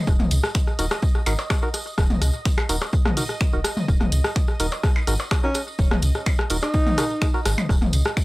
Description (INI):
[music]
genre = minimal techno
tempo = 126 BPM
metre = 4/4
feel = straight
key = Eb minor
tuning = A4 = 439 Hz
[part]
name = bubbling stepped-filter texture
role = texture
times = 0.0-8.2 s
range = Eb5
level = -38 LUFS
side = right 4 dB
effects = chorus, built-in reverb, sidechain pumping
[part]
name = round analog bass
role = bass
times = 0.1-8.0 s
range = Eb1 to Db2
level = -23 LUFS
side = equal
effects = sidechain pumping
[part]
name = electronic kick drum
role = drums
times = 0.1-8.2 s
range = none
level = -21 LUFS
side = equal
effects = none
[part]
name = minimal click drum kit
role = percussion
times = 0.1-8.1 s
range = percussion blips, rim click, toms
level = -25 LUFS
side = left 1 dB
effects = tape echo
[part]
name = tambourine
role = percussion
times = 0.1-8.2 s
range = none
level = -34 LUFS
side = right 1 dB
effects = none
[part]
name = punchy analog drum machine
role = drums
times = 0.3-8.2 s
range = finger snaps, hi-hat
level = -27 LUFS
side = right 1 dB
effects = none
[part]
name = percussive organ stab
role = stabs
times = 0.8-7.4 s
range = Eb4 to Bb4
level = -30 LUFS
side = right 1 dB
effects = chorus, tape echo
[part]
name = breathy alto saxophone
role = melody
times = 5.4-7.3 s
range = Db4 to Eb4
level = -28 LUFS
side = equal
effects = tape echo
[sound]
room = little or no reverb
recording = dry, gritty hardware recording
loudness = -19 LUFS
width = side -20 dB against mid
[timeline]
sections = 0.0-8.2 A section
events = none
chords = 0.0 Ebm